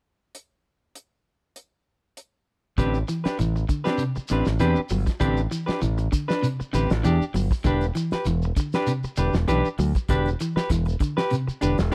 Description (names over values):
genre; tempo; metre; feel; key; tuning
afrobeat; 98 BPM; 4/4; swing 54% on 16ths; A dorian; A4 = 439 Hz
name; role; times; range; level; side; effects
damped 70s drum kit; drums; 0.3-11.9 s; hi-hat, kick drum, snare drum; -28 LUFS; equal; none
electric guitar at the edge of break-up; arpeggios; 2.8-11.8 s; C3 to F#3; -30 LUFS; equal; none
clean electric guitar; stabs; 2.8-11.9 s; C4 to B4; -28 LUFS; equal; none
modern bright fingered electric bass; bass; 2.8-11.9 s; E1 to E2; -26 LUFS; equal; none
shekere; percussion; 2.8-11.9 s; none; -36 LUFS; equal; none
room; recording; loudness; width
studio reverb; dry, close 1970s-style studio recording; -24 LUFS; mono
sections
0.3-2.8 A section; 2.8-11.9 B section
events
none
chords
0.3 N.C.; 2.8 Am11; 7.7 Em7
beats
| 0.34 0.95 1.56 2.17 | 2.78 3.39 4.00 4.61 | 5.22 5.83 6.44 7.05 | 7.66 8.27 8.88 9.48 | 10.09 10.70 11.31 11.92